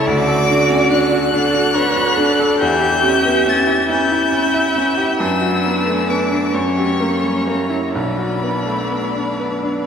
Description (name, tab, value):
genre	classical, slow romantic movement for piano quartet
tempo	41-48 BPM (dotted quarters)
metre	6/8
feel	rubato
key	B minor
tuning	A4 = 435 Hz
part	rich violin	melody	0.0-9.9 s	A#5 to A6	-20 LUFS	left 4 dB	none
part	rich cello	second line	0.0-9.9 s	C#4 to B4	-21 LUFS	right 4 dB	none
part	rich violin	second line	0.0-9.9 s	B4 to E5	-24 LUFS	left 1 dB	none
part	bright baby grand piano	accompaniment	0.0-9.9 s	B1 to A4	-18 LUFS	equal	none
room	wet church reverb, RT60 3.3 s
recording	none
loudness	-14 LUFS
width	side -7 dB against mid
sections	0.0-9.9 A section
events	none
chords	0.1 D; 2.6 C#dim/E; 5.2 Bm/F#; 6.5 F#7b9; 7.9 Bm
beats	| 0.07 1.34 | 2.60 3.90 | 5.19 6.53 | 7.94 9.39